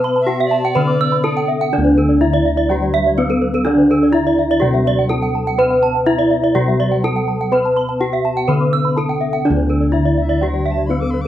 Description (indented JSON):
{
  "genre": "Balinese gamelan",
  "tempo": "124 BPM",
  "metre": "4/4",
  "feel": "straight",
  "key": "D slendro",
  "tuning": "A4 = 436 Hz",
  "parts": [
    { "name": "gamelan-type bronze metallophone", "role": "melody", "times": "0.0-11.3 s", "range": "C4-45c to C5-45c", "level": "-19 LUFS", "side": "equal", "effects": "none" },
    { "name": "gamelan-type bronze metallophone", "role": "accompaniment", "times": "0.0-11.3 s", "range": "D3 to C4-45c", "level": "-27 LUFS", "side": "equal", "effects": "none" },
    { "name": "gamelan-type bronze metallophone", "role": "arpeggios", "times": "0.0-11.3 s", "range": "C5-45c to D6", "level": "-23 LUFS", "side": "left 7 dB", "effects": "none" },
    { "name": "gamelan-type bronze metallophone", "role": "arpeggios", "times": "0.0-11.3 s", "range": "A4+25c to E6+30c", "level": "-21 LUFS", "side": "right 6 dB", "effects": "none" },
    { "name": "gamelan-type bossed gongs", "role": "bass", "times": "0.0-11.3 s", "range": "D2 to C5-45c", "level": "-17 LUFS", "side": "equal", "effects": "none" },
    { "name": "bright reedy alto recorder", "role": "second line", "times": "0.2-1.5, 10.2-11.3 s", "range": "D5 to D6", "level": "-29 LUFS", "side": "left 4 dB", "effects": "none" }
  ],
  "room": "light reverb",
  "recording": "rough home demo mix",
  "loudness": "-13 LUFS",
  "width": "side -12 dB against mid",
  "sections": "0.0-1.7 A section; 1.7-11.3 A section",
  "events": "none",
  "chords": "none"
}